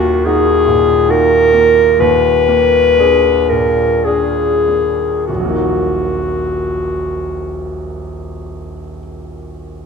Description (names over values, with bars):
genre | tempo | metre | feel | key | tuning
classical, romantic duo for clarinet and grand piano | 46-74 BPM | 3/4 | rubato | Eb minor | A4 = 440 Hz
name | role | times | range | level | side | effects
dark clarinet | melody | 0.0-8.7 s | Gb4 to Cb5 | -13 LUFS | left 2 dB | none
warm concert grand piano | accompaniment | 0.0-9.9 s | Eb1 to Ab4 | -17 LUFS | right 2 dB | none
room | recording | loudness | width
moderate recital hall reverb, RT60 1.7 s | minimal, uncompressed stereo recording | -11 LUFS | side -5 dB against mid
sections
0.0-5.3 A section; 5.3-8.8 B section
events
slowing down 0.0-5.3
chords
0.0 Ebm; 2.0 Bb7/Eb; 5.3 Ebm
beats
0.26 1.10 | 2.00 2.97 4.05 | 5.28 6.46 7.64